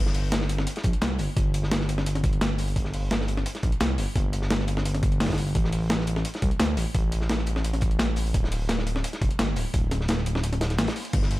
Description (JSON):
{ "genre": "liquid drum and bass", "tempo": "172 BPM", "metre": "4/4", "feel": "straight", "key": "unclear", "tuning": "A4 = 440 Hz", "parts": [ { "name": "smooth gliding synth bass", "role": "bass", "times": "0.0-11.4 s", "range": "D1 to D2", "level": "-26 LUFS", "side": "equal", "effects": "none" }, { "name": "breakbeat sampler-style drum kit", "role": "drums", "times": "0.1-11.4 s", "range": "crash cymbal, hi-hat, snare drum", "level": "-29 LUFS", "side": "left 1 dB", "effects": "overdrive" }, { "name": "crunchy breakbeat drum kit", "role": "drums", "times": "0.1-11.4 s", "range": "hi-hat, snare drum", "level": "-34 LUFS", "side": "equal", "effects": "high-pass filter on hats, high-pass filter on snare, high-pass filter on room" }, { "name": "electronic kick drum", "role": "drums", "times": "0.8-11.2 s", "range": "none", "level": "-26 LUFS", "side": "equal", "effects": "overdrive" } ], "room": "little or no reverb", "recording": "none", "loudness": "-23 LUFS", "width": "side -17 dB against mid", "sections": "0.0-11.4 A section", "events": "kick drops out 10.4-11.1", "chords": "none" }